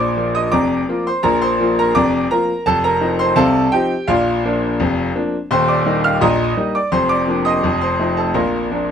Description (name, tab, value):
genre	ragtime piano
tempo	84 BPM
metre	2/4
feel	straight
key	Bb major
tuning	A4 = 440 Hz
part	bright grand piano	solo	0.0-8.9 s	Eb1 to F6	-14 LUFS	equal	none
room	light reverb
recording	close, detailed microphones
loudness	-14 LUFS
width	side -8 dB against mid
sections	0.0-8.9 A section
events	none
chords	0.0 Bb; 2.7 F7; 4.1 Bb; 5.5 Eb; 6.9 Bb/F; 7.6 F7; 8.4 Bb